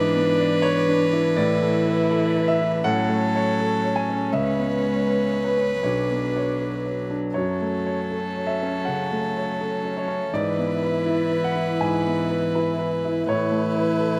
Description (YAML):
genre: neoclassical piano and strings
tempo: 81 BPM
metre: 4/4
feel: rubato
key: F# minor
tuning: A4 = 440 Hz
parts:
  - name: warm violin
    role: melody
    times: 0.0-14.2 s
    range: A4 to B4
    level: -28 LUFS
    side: equal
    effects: slapback echo
  - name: warm cello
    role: second line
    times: 0.0-14.2 s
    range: E3 to G#3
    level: -31 LUFS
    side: equal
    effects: none
  - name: dark viola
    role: accompaniment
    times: 0.0-14.2 s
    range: C#4 to E4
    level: -31 LUFS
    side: equal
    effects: none
  - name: warm concert grand piano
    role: accompaniment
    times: 0.0-14.2 s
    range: B1 to G#5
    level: -27 LUFS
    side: equal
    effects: slapback echo
room: little or no reverb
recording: recorded outdoors, with no room sound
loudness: -23 LUFS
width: mono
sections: 0.0-14.2 A section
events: none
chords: 0.0 E7/G#; 1.4 Asus2; 2.8 F#m/A; 4.3 C#m7; 5.8 Bmadd9; 7.3 F#m; 10.3 E7/G#; 13.3 Asus2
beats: 0.62 | 1.36 2.10 2.83 3.57 | 4.31 5.06 5.82 6.58 | 7.34 8.10 8.85 9.60 | 10.34 11.07 11.81 12.55 | 13.29 14.02